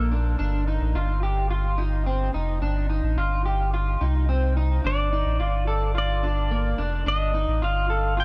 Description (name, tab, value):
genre	dream pop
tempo	108 BPM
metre	4/4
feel	straight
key	unclear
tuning	A4 = 441 Hz
part	pedal steel guitar	melody	0.0-0.1, 4.9-8.2 s	D5 to G5	-31 LUFS	equal	tape echo
part	electric guitar at the edge of break-up	arpeggios	0.0-8.2 s	Bb3 to A4	-31 LUFS	equal	lush chorus, tape echo
part	sub bass with octave	bass	0.0-8.2 s	F1 to C2	-26 LUFS	equal	none
room	light reverb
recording	dark, warm production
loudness	-24 LUFS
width	mono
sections	0.0-8.2 A section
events	none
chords	0.4 F5; 4.8 Ebmaj9#11